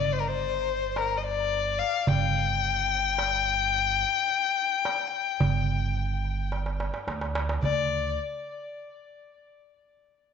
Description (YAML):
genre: Turkish makam ensemble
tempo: 108 BPM (eighths)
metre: 10/8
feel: straight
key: G makam nihavent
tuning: A4 = 440 Hz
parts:
  - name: rich violin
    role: melody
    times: 0.0-8.1 s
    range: Bb4 to G5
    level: -26 LUFS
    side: left 9 dB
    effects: tape echo
  - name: upright bass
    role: bass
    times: 0.0-8.2 s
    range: G1 to D2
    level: -31 LUFS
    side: right 2 dB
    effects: none
  - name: darbuka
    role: percussion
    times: 1.0-8.1 s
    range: none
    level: -30 LUFS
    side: right 3 dB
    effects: none
room: moderate echo chamber reverb, RT60 1.8 s, studio reverb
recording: nothing above 7.8 kHz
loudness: -24 LUFS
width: side -6 dB against mid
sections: 0.0-7.6 A section; 7.6-10.3 B section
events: drum fill 6.5-7.6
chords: none